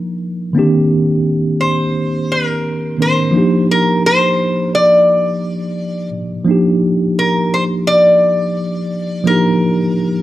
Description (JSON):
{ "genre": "R&B", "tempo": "86 BPM", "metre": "4/4", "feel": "swing 64% on 16ths", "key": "Eb major", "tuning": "A4 = 444 Hz", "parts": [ { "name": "lap resonator guitar", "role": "melody", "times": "0.0-10.2 s", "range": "Bb4 to D5", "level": "-14 LUFS", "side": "equal", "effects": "slapback echo" }, { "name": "mellow tine electric piano", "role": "accompaniment", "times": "0.0-10.2 s", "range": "D3 to Bb4", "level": "-15 LUFS", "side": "equal", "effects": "medium stereo tremolo" } ], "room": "light reverb, studio reverb", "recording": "none", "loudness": "-12 LUFS", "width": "side -14 dB against mid", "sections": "0.0-6.5 A section; 6.5-10.2 A section", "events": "none", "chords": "0.0 Ebmaj7(no3); 0.5 Cm9; 3.3 Ebmaj9", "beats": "0.19 | 0.89 1.58 2.28 2.98 | 3.68 4.37 5.07 5.77 | 6.47 7.16 7.86 8.56 | 9.26 9.96" }